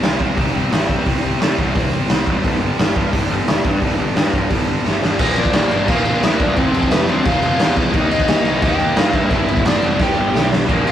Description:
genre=punk rock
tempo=175 BPM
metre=4/4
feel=straight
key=unclear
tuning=A4 = 441 Hz
part: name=distorted electric guitar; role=riff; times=0.0-10.9 s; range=F2 to Eb4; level=-22 LUFS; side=equal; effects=overdrive
part: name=fuzz picked electric bass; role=bass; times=0.0-10.9 s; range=F1 to C3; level=-22 LUFS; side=equal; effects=overdrive
part: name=raw garage drum kit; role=drums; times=0.0-10.9 s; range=crash cymbal, hi-hat, kick drum, snare drum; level=-17 LUFS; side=equal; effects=none
part: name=thick fuzz guitar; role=riff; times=5.2-10.9 s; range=F2 to Eb4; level=-25 LUFS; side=equal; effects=none
part: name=overdriven electric guitar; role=melody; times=5.4-10.9 s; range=B3 to G5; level=-20 LUFS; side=equal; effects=none
room=light reverb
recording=rough rehearsal-room recording, warm saturation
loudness=-14 LUFS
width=side -10 dB against mid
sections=0.0-5.2 A section; 5.2-10.9 B section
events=drum fill 4.9-5.2, 10.0-10.7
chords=0.0 C5; 2.4 G5; 5.2 Bb; 6.6 F5; 7.9 Eb; 9.3 G

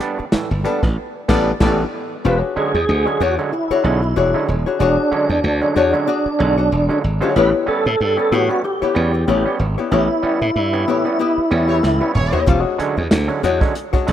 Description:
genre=funk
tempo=94 BPM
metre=4/4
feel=swing 56% on 16ths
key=unclear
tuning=A4 = 439 Hz
part: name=auto-wah clav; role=stabs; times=0.0-14.1 s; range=A2 to D4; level=-24 LUFS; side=right 4 dB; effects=overdrive, analog delay
part: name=warm soul drum kit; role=drums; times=0.0-1.8, 11.8-14.1 s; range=crash cymbal, hi-hat, kick drum, snare drum, toms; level=-20 LUFS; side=right 1 dB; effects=none
part: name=archtop guitar, miked and amplified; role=accompaniment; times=0.2-14.1 s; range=G3 to D#5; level=-21 LUFS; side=left 6 dB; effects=none
part: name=glassy slap bass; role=bass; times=0.2-14.1 s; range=D#1 to A2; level=-19 LUFS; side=right 1 dB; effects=none
part: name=mellow horn section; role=second line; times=1.3-1.8, 11.7-12.4 s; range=G3 to D5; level=-29 LUFS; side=right 3 dB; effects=none
part: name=tonewheel organ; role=melody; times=2.3-12.1 s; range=D4 to B4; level=-20 LUFS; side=right 1 dB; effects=overdrive, chorus vibrato, slow rotary speaker, analog delay
room=light reverb, studio reverb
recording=rough home demo mix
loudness=-15 LUFS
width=side -10 dB against mid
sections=0.0-2.2 A section; 2.2-14.1 B section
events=band accent 1.0-2.2, 9.9-12.5; drum fill 11.8-12.5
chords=0.0 A9sus4; 2.2 E13; 7.4 A9; 12.5 E13

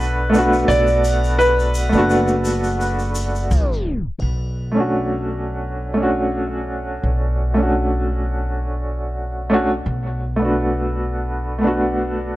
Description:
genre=trip hop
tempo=85 BPM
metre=4/4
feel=straight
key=B minor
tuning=A4 = 439 Hz
part: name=felt-muted upright piano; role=melody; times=0.0-3.5 s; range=B4 to D5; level=-20 LUFS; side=equal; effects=dub echo
part: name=warm upright piano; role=accompaniment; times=0.0-12.4 s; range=A3 to F#4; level=-20 LUFS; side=equal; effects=tremolo, tape echo
part: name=upright bass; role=bass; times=0.0-12.4 s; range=F#1 to E2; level=-22 LUFS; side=equal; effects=none
part: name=tube shaker and triangle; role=percussion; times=0.3-4.2 s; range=none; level=-35 LUFS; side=left 3 dB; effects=none
room=light reverb, small room ambience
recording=worn, warbling old tape, cassette tape, warbly pitch drift, tape stop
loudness=-17 LUFS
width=side -17 dB against mid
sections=0.0-4.2 A section; 4.2-12.4 B section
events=tape stop 3.5-4.2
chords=0.0 E7sus4/B (rootless); 4.2 Bm7

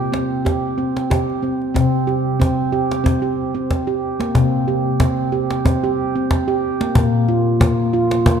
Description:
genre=world meditative, meditative tuned percussion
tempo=92 BPM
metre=4/4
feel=swing 55% on 16ths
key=unclear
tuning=A4 = 439 Hz
part: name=handpan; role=arpeggios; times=0.0-8.4 s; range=Bb2 to G4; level=-17 LUFS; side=right 1 dB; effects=none
part: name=cajon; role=percussion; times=0.1-8.4 s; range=none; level=-20 LUFS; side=left 1 dB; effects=none
room=wet concert hall reverb, RT60 2.4 s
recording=dark, warm production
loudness=-16 LUFS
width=side -7 dB against mid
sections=0.0-1.8 A section; 1.8-8.4 B section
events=none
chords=0.0 C5; 7.0 Bb5

